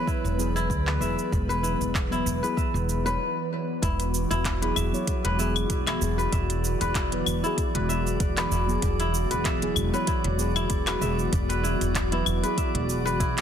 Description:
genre	organic downtempo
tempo	96 BPM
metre	4/4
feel	swing 55% on 16ths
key	E mixolydian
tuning	A4 = 440 Hz
part	muted felt-like synth keys	accompaniment	0.0-13.4 s	F#3 to C#5	-32 LUFS	equal	chorus, sidechain pumping, digital delay
part	airy breathy pad	sustained chords	0.0-13.4 s	E3 to B4	-32 LUFS	right 1 dB	chorus, sidechain pumping
part	kora	arpeggios	0.0-13.4 s	E4 to E5	-30 LUFS	left 1 dB	digital delay
part	drifting glass-harmonics texture	texture	0.0-13.4 s	D5	-38 LUFS	equal	chorus, built-in reverb
part	electronic kick drum	drums	0.1-13.3 s	none	-28 LUFS	equal	none
part	organic electronic drum kit	drums	0.1-13.4 s	claves, handclaps, hi-hat, shaker	-31 LUFS	equal	none
part	upright bass	bass	0.2-13.3 s	E1 to D2	-28 LUFS	equal	none
room	light reverb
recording	dense, heavily limited modern master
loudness	-23 LUFS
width	side -9 dB against mid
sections	0.0-3.8 A section; 3.8-13.4 B section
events	break 3.2-3.8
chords	0.0 E7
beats	0.07 0.70 | 1.32 1.95 2.58 3.20 | 3.83 4.45 5.08 5.70 | 6.33 6.95 7.58 8.20 | 8.82 9.45 10.07 10.70 | 11.32 11.95 12.57 13.20

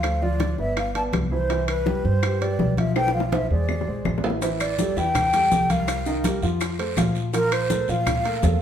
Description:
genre	Afro-Cuban jazz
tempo	164 BPM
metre	4/4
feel	straight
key	C major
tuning	A4 = 437 Hz
part	breathy mellow concert flute	melody	0.0-8.6 s	Bb4 to A5	-25 LUFS	equal	slapback echo
part	dark concert grand piano	accompaniment	0.0-8.6 s	Eb3 to F5	-28 LUFS	right 1 dB	none
part	upright bass	bass	0.0-8.6 s	G1 to Bb2	-26 LUFS	equal	none
part	bongos	percussion	0.0-8.6 s	none	-32 LUFS	left 5 dB	none
part	claves	percussion	0.0-8.2 s	none	-35 LUFS	left 4 dB	none
part	congas	percussion	0.0-8.6 s	none	-28 LUFS	left 1 dB	none
part	timbales	percussion	0.0-8.6 s	none	-31 LUFS	right 3 dB	none
part	guiro	percussion	4.4-8.6 s	none	-39 LUFS	right 5 dB	none
part	maracas	percussion	4.4-8.6 s	none	-39 LUFS	left 5 dB	none
room	moderate large studio reverb, RT60 0.9 s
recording	band playing live in one room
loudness	-20 LUFS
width	side -9 dB against mid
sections	0.0-4.4 A section; 4.4-8.6 B section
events	drum fill 3.0-4.4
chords	0.0 Dm7; 0.8 G; 1.5 Cmaj9; 3.0 G13b9/B; 3.7 Eaug7; 4.4 Am7; 5.9 Cm7; 6.6 F; 7.3 Bbsus2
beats	| 0.04 0.40 0.77 1.13 | 1.50 1.86 2.23 2.60 | 2.96 3.33 3.69 4.06 | 4.42 4.79 5.15 5.52 | 5.88 6.25 6.61 6.97 | 7.34 7.70 8.07 8.43

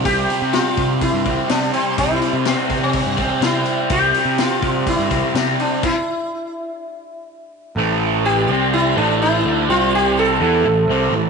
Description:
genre	psychedelic rock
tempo	124 BPM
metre	4/4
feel	straight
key	unclear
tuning	A4 = 442 Hz
part	sitar	melody	0.0-11.3 s	B3 to A4	-20 LUFS	equal	tape echo
part	mellow tonewheel organ	sustained chords	0.0-11.3 s	G4 to C6	-29 LUFS	right 14 dB	chorus vibrato, lush chorus
part	fuzz guitar	riff	0.0-11.3 s	A2 to E4	-20 LUFS	right 1 dB	distortion, phaser
part	fuzz picked electric bass	bass	0.0-11.3 s	A1 to C3	-23 LUFS	right 1 dB	overdrive, transformer saturation
part	vintage drum kit	drums	0.1-5.9 s	crash cymbal, hi-hat, kick drum, snare drum	-24 LUFS	left 6 dB	none
room	light reverb, small room ambience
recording	1960s-style stereo with parts hard left and right, nothing above 10.3 kHz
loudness	-15 LUFS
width	side -5 dB against mid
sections	0.0-7.8 A section; 7.8-11.3 B section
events	stop 5.8-7.8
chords	0.0 C; 7.8 Am; 8.5 C5; 9.0 Am; 9.7 C5; 10.4 Am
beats	| 0.06 0.54 1.02 1.50 | 1.98 2.47 2.95 3.43 | 3.91 4.39 4.88 5.36 | 5.84 6.32 6.80 7.29 | 7.77 8.25 8.73 9.21 | 9.69 10.17 10.65 11.13

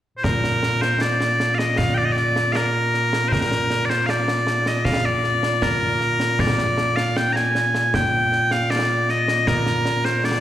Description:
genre	scottish traditional, Scottish pipe music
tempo	78 BPM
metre	2/4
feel	straight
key	Bb mixolydian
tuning	A4 = 441 Hz
part	loud bright bagpipes	melody	0.2-10.4 s	Bb2 to Bb5	-19 LUFS	equal	slapback echo
part	concert snare drum and concert bass drum	drums	0.2-10.4 s	none	-25 LUFS	right 1 dB	none
room	moderate lush hall reverb, RT60 2.8 s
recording	live gig heard through the venue's PA, recital hall reverb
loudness	-18 LUFS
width	side -12 dB against mid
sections	0.2-10.4 A section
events	none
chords	none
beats	| 0.24 1.01 | 1.78 2.55 | 3.32 4.09 | 4.86 5.63 | 6.40 7.17 | 7.94 8.71 | 9.48 10.24

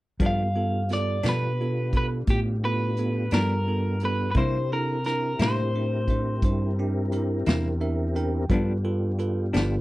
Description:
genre	slow blues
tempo	58 BPM (dotted quarters)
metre	12/8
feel	straight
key	G mixolydian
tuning	A4 = 440 Hz
part	bell-like tine electric piano	accompaniment	0.2-9.8 s	B3 to G5	-32 LUFS	right 4 dB	none
part	clean electric guitar	accompaniment	0.2-9.8 s	G2 to E4	-28 LUFS	left 3 dB	tremolo
part	mellow tonewheel organ	sustained chords	0.2-9.8 s	B3 to Bb4	-34 LUFS	left 2 dB	chorus vibrato, slow rotary speaker
part	fretless electric bass	bass	0.2-9.8 s	G1 to C3	-26 LUFS	equal	none
part	vintage brush drum kit	drums	0.2-9.7 s	hi-hat, kick drum, snare drum	-26 LUFS	equal	none
part	electric guitar at the edge of break-up	melody	0.3-6.8 s	G4 to F5	-29 LUFS	equal	slapback echo
room	little or no reverb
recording	dry, close 1970s-style studio recording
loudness	-23 LUFS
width	side -18 dB against mid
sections	0.2-9.8 A section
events	tine electric piano fill 7.5-8.5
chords	0.2 G7; 4.4 C7; 8.5 G7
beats	| 0.21 1.25 2.28 3.32 | 4.36 5.39 6.43 7.46 | 8.50 9.54

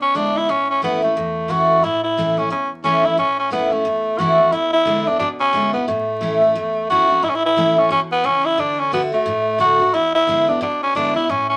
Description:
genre	rock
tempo	178 BPM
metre	4/4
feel	swing 60% on 8ths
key	A major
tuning	A4 = 440 Hz
part	growling tenor saxophone	melody	0.0-11.6 s	A3 to F#4	-19 LUFS	equal	none
part	picked steel-string acoustic guitar	accompaniment	0.0-11.6 s	E2 to F#4	-23 LUFS	equal	none
room	moderate studio reverb, RT60 0.6 s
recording	vinyl crackle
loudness	-18 LUFS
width	mono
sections	0.0-7.2 A section; 7.2-11.6 A section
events	none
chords	0.5 A; 4.5 E7; 5.9 A; 8.6 D; 9.9 E7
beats	0.15 | 0.49 0.82 1.16 1.50 | 1.83 2.17 2.50 2.84 | 3.18 3.52 3.85 4.19 | 4.53 4.86 5.20 5.54 | 5.88 6.21 6.55 6.89 | 7.23 7.57 7.90 8.24 | 8.58 8.92 9.26 9.59 | 9.93 10.27 10.61 10.94 | 11.28

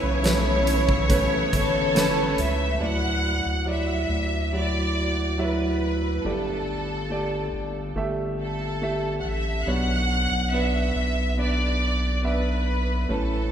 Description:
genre	pop ballad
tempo	70 BPM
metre	4/4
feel	straight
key	D major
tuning	A4 = 440 Hz
part	rich symphonic violin section	melody	0.0-13.5 s	A4 to F#5	-27 LUFS	equal	none
part	clear grand piano	accompaniment	0.0-13.5 s	G2 to E5	-28 LUFS	right 2 dB	none
part	warm studio string section	sustained chords	0.0-2.8 s	C#3 to E4	-29 LUFS	equal	none
part	saturated sub bass	bass	0.0-13.5 s	G1 to D2	-27 LUFS	equal	none
part	huge arena drum kit	drums	0.2-2.6 s	hi-hat, kick drum, snare drum	-27 LUFS	equal	none
room	wet church reverb, RT60 2.7 s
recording	recorded in a church or concert hall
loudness	-22 LUFS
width	side -9 dB against mid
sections	0.0-2.8 A section; 2.8-13.5 B section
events	none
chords	0.0 Aadd9; 2.8 Dadd9; 6.2 Gsus2; 9.7 Bmadd9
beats	0.24 1.10 1.96 | 2.81 3.67 4.53 5.38 | 6.24 7.10 7.96 8.81 | 9.67 10.53 11.38 12.24 | 13.10

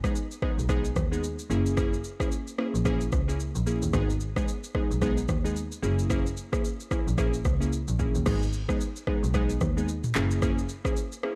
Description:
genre	afrobeats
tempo	111 BPM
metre	4/4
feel	swing 58% on 16ths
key	G# minor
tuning	A4 = 439 Hz
part	glassy digital keys	accompaniment	0.0-11.4 s	G#3 to G#4	-33 LUFS	equal	chorus
part	afro-pop drum kit	drums	0.0-11.4 s	crash cymbal, handclaps, kick drum, rim click, shaker, toms	-32 LUFS	equal	overdrive
part	bright double bass	bass	0.6-10.6 s	F#1 to D#2	-31 LUFS	equal	none
room	little or no reverb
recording	dry, gritty hardware recording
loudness	-28 LUFS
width	mono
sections	0.0-8.3 A section; 8.3-11.4 B section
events	none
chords	0.0 G#m; 1.5 F#7; 3.9 G#m; 5.8 F#7; 8.3 G#m; 10.2 F#7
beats	0.15 0.69 1.24 | 1.78 2.32 2.86 3.40 | 3.94 4.48 5.02 5.56 | 6.10 6.64 7.18 7.72 | 8.26 8.80 9.34 9.88 | 10.42 10.96

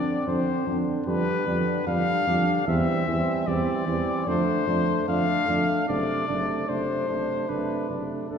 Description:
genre	classical, brass quintet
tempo	75 BPM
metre	4/4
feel	straight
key	unclear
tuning	A4 = 441 Hz
part	mellow trumpet	melody	0.0-8.4 s	A4 to F5	-27 LUFS	left 5 dB	none
part	warm flugelhorn	second line	0.0-8.4 s	C4 to D4	-30 LUFS	right 6 dB	none
part	bright trombone	accompaniment	0.0-8.4 s	C3 to E3	-33 LUFS	right 1 dB	none
part	mellow French horn	accompaniment	0.0-8.4 s	G3 to C4	-31 LUFS	left 2 dB	none
part	mellow tuba	bass	0.0-8.4 s	F#1 to F2	-28 LUFS	right 3 dB	none
room	wet scoring stage reverb, RT60 1.7 s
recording	heard from further back in the room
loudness	-22 LUFS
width	side -7 dB against mid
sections	0.0-8.4 A section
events	none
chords	0.0 Dm7/F; 1.1 G7/F; 2.7 C/E; 4.3 Dm7/F; 5.9 D7/F#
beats	0.28 1.07 1.88 | 2.67 3.47 4.27 5.08 | 5.88 6.68 7.48 8.30

